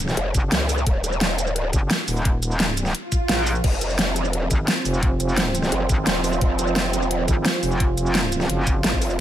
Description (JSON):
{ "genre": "dark technical drum and bass", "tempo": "173 BPM", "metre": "4/4", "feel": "straight", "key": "F phrygian", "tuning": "A4 = 440 Hz", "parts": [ { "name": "metallic wobble bass", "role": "bass", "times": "0.0-8.8 s", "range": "Eb1 to Bb1", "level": "-23 LUFS", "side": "equal", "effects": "chorus" }, { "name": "dubstep drum kit", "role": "drums", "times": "0.0-9.2 s", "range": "crash cymbal, hi-hat, shaker, snare drum", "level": "-24 LUFS", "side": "equal", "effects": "overdrive" }, { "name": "growl bass", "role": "bass", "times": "0.2-9.2 s", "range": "Eb1 to Db2", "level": "-23 LUFS", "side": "equal", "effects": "chorus, overdrive, sidechain pumping" }, { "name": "electronic kick drum", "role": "drums", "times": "0.3-9.0 s", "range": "none", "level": "-21 LUFS", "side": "equal", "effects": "none" }, { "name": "swell", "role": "sound effects", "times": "3.0-3.6 s", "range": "none", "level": "-30 LUFS", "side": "right 2 dB", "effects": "none" }, { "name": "sweeping resonant pad", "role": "sustained chords", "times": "3.6-9.2 s", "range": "F3 to F4", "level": "-26 LUFS", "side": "right 4 dB", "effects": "chorus, sidechain pumping" } ], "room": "light reverb", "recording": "none", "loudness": "-19 LUFS", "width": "side -12 dB against mid", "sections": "0.0-9.2 A section", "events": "swell 3.0-3.6", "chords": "0.0 N.C.; 3.6 Fm", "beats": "0.17 0.52 | 0.86 1.21 1.56 1.91 | 2.25 2.60 2.95 3.29 | 3.64 3.99 4.33 4.68 | 5.03 5.37 5.72 6.07 | 6.41 6.76 7.11 7.46 | 7.80 8.15 8.49 8.84 | 9.19" }